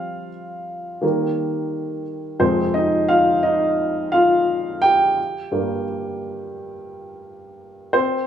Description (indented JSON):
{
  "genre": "pop",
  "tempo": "87 BPM",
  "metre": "4/4",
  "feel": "straight",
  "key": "unclear",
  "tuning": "A4 = 441 Hz",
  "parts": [
    { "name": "warm upright piano", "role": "solo", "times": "0.0-8.3 s", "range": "F2 to G5", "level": "-19 LUFS", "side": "equal", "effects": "none" }
  ],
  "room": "moderate large studio reverb, RT60 1.2 s",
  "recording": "band playing live in one room, small room ambience",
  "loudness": "-18 LUFS",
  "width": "side -9 dB against mid",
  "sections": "0.0-2.4 A section; 2.4-8.3 B section",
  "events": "upright piano solo 0.0-2.4, 2.4-8.3",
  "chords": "0.0 Fsus2; 1.0 Eb; 2.4 Fm; 5.2 Gm"
}